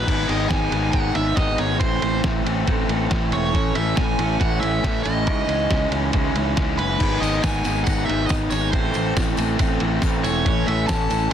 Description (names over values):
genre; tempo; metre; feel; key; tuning
indie rock; 139 BPM; 4/4; straight; unclear; A4 = 440 Hz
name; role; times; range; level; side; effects
biting overdriven guitar; melody; 0.0-11.3 s; B4 to A5; -25 LUFS; right 2 dB; slapback echo
fuzz guitar; riff; 0.0-11.3 s; D#3 to D#4; -25 LUFS; left 9 dB; distortion
growling fingered electric bass; bass; 0.0-11.3 s; E1 to C#2; -25 LUFS; equal; overdrive
electric guitar through a small old amp; riff; 0.1-11.3 s; G#2 to A4; -27 LUFS; right 11 dB; analog chorus, slapback echo
lo-fi sampler-style drum kit; drums; 0.1-11.3 s; crash cymbal, kick drum, ride cymbal, snare drum; -24 LUFS; equal; none
tambourine; percussion; 7.2-11.2 s; none; -38 LUFS; left 19 dB; none
room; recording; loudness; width
light reverb; dense, heavily limited modern master; -18 LUFS; side -9 dB against mid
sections
0.1-11.3 A section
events
none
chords
0.1 G#m; 1.8 Am; 3.5 A; 5.3 C#madd9; 7.0 G#m; 8.7 Am; 10.5 A